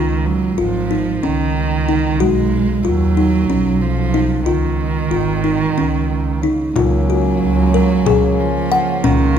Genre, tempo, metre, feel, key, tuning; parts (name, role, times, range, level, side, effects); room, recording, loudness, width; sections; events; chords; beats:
contemporary instrumental, chamber music in an uneven meter; 185 BPM (eighths); 7/8; straight; Db mixolydian; A4 = 442 Hz
dark cello; second line; 0.0-9.4 s; Db3 to Ab3; -18 LUFS; right 6 dB
kalimba; arpeggios; 0.0-9.4 s; Db4 to Gb5; -19 LUFS; left 4 dB
clear double bass; bass; 0.0-9.4 s; Ab1 to Eb2; -19 LUFS; right 1 dB
pedal harmonium; sustained chords; 6.8-9.4 s; Db3 to F4; -22 LUFS; left 3 dB
frame drum; percussion; 6.8-9.3 s; -21 LUFS; left 5 dB
moderate recital hall reverb, RT60 1.5 s; minimal, uncompressed stereo recording; -14 LUFS; side -8 dB against mid
0.0-6.8 A section; 6.8-9.4 B section
0.0 Dbsus2; 2.2 Abm7/Cb; 4.5 Db; 6.8 Gb/Db
0.26 0.59 0.91 1.24 1.56 1.88 | 2.21 2.53 2.85 3.17 3.50 3.82 4.14 | 4.47 4.79 5.11 5.44 5.77 6.10 6.43 | 6.76 7.09 7.42 7.74 8.07 8.39 8.72 | 9.04 9.37